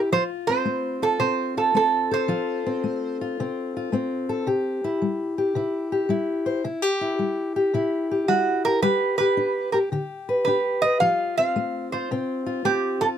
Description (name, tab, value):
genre	acoustic country blues, solo or duo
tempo	110 BPM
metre	4/4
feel	swing 66% on 8ths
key	unclear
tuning	A4 = 440 Hz
part	fingerpicked steel-string acoustic guitar	accompaniment	0.0-13.2 s	C3 to C5	-24 LUFS	left 2 dB	none
part	lap resonator guitar	melody	0.1-3.2, 8.3-13.1 s	F#4 to F5	-22 LUFS	right 4 dB	none
room	moderate booth ambience, RT60 0.2 s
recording	none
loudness	-21 LUFS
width	side -9 dB against mid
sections	0.0-13.2 A section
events	none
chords	0.1 F; 4.5 C; 8.8 G; 11.0 F